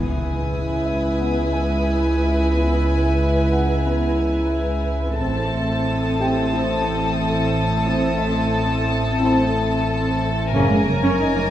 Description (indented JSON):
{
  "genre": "cinematic, suspense film score",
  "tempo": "90 BPM",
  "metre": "4/4",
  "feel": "straight",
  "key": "unclear",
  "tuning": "A4 = 440 Hz",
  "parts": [
    { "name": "rich studio violin section", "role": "melody", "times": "0.0-11.5 s", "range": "G#5 to A5", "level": "-30 LUFS", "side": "left 3 dB", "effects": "none" },
    { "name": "dark studio violin section", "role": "second line", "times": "0.0-11.5 s", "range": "A4 to B4", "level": "-27 LUFS", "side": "left 2 dB", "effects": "none" },
    { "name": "warm studio viola section", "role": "accompaniment", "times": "0.0-11.4 s", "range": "G#3 to E4", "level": "-24 LUFS", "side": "right 2 dB", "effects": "none" },
    { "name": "glass harmonica", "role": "sustained chords", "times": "0.0-11.5 s", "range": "G#4 to G#5", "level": "-30 LUFS", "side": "equal", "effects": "none" },
    { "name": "warm French horn section", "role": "sustained chords", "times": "0.0-10.8 s", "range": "A#3 to G#4", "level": "-27 LUFS", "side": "left 2 dB", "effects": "none" },
    { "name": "dark studio cello section", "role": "bass", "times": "0.0-11.4 s", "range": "C#2 to A2", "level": "-26 LUFS", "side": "right 1 dB", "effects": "none" },
    { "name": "warm studio double bass section", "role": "bass", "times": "0.0-10.9 s", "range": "F#1 to C#2", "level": "-27 LUFS", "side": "right 1 dB", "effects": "none" },
    { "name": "punchy sub bass", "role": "drone", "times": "0.0-11.5 s", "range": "F#1 to C#2", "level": "-26 LUFS", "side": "equal", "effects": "none" },
    { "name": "impact", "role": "sound effects", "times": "0.0-2.5 s", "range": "none", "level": "-32 LUFS", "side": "left 1 dB", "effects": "none" },
    { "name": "warm studio violin section", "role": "texture", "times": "0.0-10.2 s", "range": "G#5 to D#6", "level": "-35 LUFS", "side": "left 4 dB", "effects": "none" },
    { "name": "clear grand piano", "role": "texture", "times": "0.9-11.5 s", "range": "D#4 to G#5", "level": "-33 LUFS", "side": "equal", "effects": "none" }
  ],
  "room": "wet recital hall reverb, RT60 1.6 s",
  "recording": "heard from further back in the room",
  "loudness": "-18 LUFS",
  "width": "side -12 dB against mid",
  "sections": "0.0-11.5 A section",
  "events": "impact 0.0-2.5",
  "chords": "0.0 C#m7; 5.2 Am; 10.5 F#add9"
}